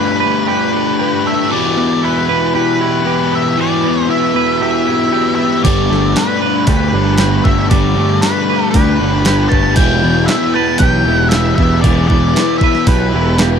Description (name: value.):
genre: rock, shoegaze and dream pop.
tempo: 116 BPM.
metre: 4/4.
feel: straight.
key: unclear.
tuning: A4 = 440 Hz.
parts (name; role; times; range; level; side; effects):
octave-fuzz lead guitar; melody; 0.0-13.4 s; B4 to A5; -18 LUFS; left 1 dB; distortion, tape echo.
biting overdriven guitar; riff; 0.0-13.6 s; E2 to G3; -19 LUFS; right 1 dB; phaser.
crunchy overdriven guitar; riff; 0.0-13.6 s; E3 to B4; -20 LUFS; right 15 dB; reverse reverb.
thick fuzz guitar; riff; 0.0-13.6 s; E3 to B4; -18 LUFS; left 9 dB; distortion, analog chorus.
fuzz picked electric bass; bass; 5.6-13.6 s; E1 to D2; -15 LUFS; right 1 dB; overdrive.
crisp 8-bit digital drum machine; drums; 5.6-13.5 s; hi-hat, kick drum, snare drum; -14 LUFS; right 1 dB; none.
room: light reverb.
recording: none.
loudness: -11 LUFS.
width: side -7 dB against mid.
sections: 0.0-13.6 A section.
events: none.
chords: 0.0 Gadd9; 1.5 Em; 5.6 Gadd9; 9.8 Em.